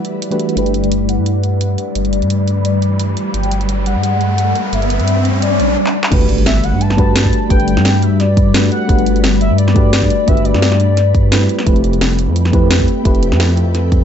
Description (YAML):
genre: liquid drum and bass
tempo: 173 BPM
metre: 4/4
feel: swing 54% on 16ths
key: G major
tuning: A4 = 439 Hz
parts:
  - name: warm velvety synth lead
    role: melody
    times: 0.0-11.5 s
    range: D5 to A5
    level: -21 LUFS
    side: left 4 dB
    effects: chorus, ping-pong delay
  - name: mellow FM electric piano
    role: accompaniment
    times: 0.0-14.0 s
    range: E3 to F#5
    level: -20 LUFS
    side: right 1 dB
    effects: chorus, tremolo, low-pass filter, tape echo
  - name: ethereal airy pad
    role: sustained chords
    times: 0.0-14.0 s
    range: G3 to B5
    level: -21 LUFS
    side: left 3 dB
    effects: ensemble chorus, built-in reverb, phaser
  - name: drum and bass drum kit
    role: drums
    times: 0.0-14.0 s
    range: crash cymbal, handclaps, hi-hat, snare drum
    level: -20 LUFS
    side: equal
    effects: overdrive, high-pass filter on hats, high-pass filter on snare, high-pass filter on cymbals
  - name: dark detuned saw bass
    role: bass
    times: 0.6-14.0 s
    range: F1 to G2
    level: -15 LUFS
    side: equal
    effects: none
  - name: riser and impact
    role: sound effects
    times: 2.3-7.5 s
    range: none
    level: -21 LUFS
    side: right 1 dB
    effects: none
  - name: electronic kick drum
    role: drums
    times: 6.1-14.0 s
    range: none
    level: -14 LUFS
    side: equal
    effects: none
room: little or no reverb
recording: dark, warm production, nothing above 7.9 kHz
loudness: -11 LUFS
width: side -8 dB against mid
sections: 0.6-6.1 A section; 6.1-14.0 B section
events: build-up 0.6-6.1; filter sweep on FM electric piano 0.6-6.1; filter sweep on ambient pad 0.6-6.1; filter sweep on soft synth lead 0.6-6.1; riser 2.3-5.8; drum fill 5.9; drop 6.1-14.0; impact 6.1-7.5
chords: 0.0 Em11; 0.6 Gmaj7; 5.9 G; 6.1 Gmaj7; 11.5 Fmaj9#11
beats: 0.22 | 0.57 0.91 1.26 1.61 | 1.96 2.30 2.65 3.00 | 3.34 3.69 4.04 4.38 | 4.73 5.08 5.42 5.77 | 6.12 6.46 6.81 7.16 | 7.50 7.85 8.20 8.54 | 8.89 9.24 9.59 9.93 | 10.28 10.62 10.97 11.32 | 11.67 12.01 12.36 12.71 | 13.05 13.40 13.75